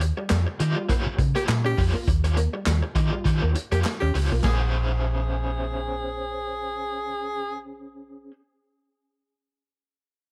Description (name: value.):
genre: funk.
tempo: 101 BPM.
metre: 4/4.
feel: swing 56% on 16ths.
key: Bb dorian.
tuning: A4 = 439 Hz.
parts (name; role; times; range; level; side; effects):
crunchy overdriven guitar; accompaniment; 0.0-8.3 s; Db4 to Eb5; -35 LUFS; equal; tremolo.
electric guitar through a small old amp; riff; 0.0-4.6 s; G3 to Db4; -36 LUFS; equal; none.
vintage muted fingered electric bass; bass; 0.0-8.3 s; Bb1 to Eb3; -26 LUFS; equal; none.
vintage drum kit; drums; 0.0-4.6 s; china cymbal, handclaps, hi-hat, kick drum, snare drum; -29 LUFS; equal; none.
group handclap; percussion; 0.3-4.7 s; none; -39 LUFS; equal; none.
breathy tenor saxophone; second line; 1.4-7.6 s; G4 to Ab4; -32 LUFS; equal; none.
room: small room ambience.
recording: none.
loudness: -25 LUFS.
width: mono.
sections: 0.0-4.4 A section; 4.4-6.8 B section.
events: none.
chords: 0.0 Eb9; 4.4 Bbm9.